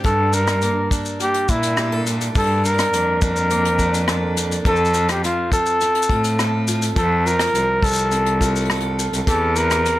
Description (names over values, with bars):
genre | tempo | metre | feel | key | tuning
folktronica | 104 BPM | 4/4 | straight | G dorian | A4 = 440 Hz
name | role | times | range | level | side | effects
breathy flugelhorn | melody | 0.0-10.0 s | E4 to Bb4 | -20 LUFS | equal | digital delay, plate reverb
picked steel-string acoustic guitar | arpeggios | 0.0-10.0 s | G2 to A4 | -27 LUFS | right 1 dB | digital delay
clear cello | bass | 0.0-10.0 s | C2 to Bb2 | -22 LUFS | equal | none
jazz brush drum kit | drums | 0.0-10.0 s | hi-hat, rim click, shaker | -26 LUFS | left 2 dB | none
kick drum | drums | 0.0-9.4 s | none | -20 LUFS | equal | none
room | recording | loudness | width
light reverb | none | -16 LUFS | side -15 dB against mid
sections
0.0-10.0 A section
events
none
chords
0.0 Gmadd9; 4.7 F; 9.3 C/E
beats
| 0.05 0.62 1.20 1.78 | 2.35 2.93 3.51 4.08 | 4.66 5.24 5.82 6.39 | 6.97 7.55 8.12 8.70 | 9.28 9.85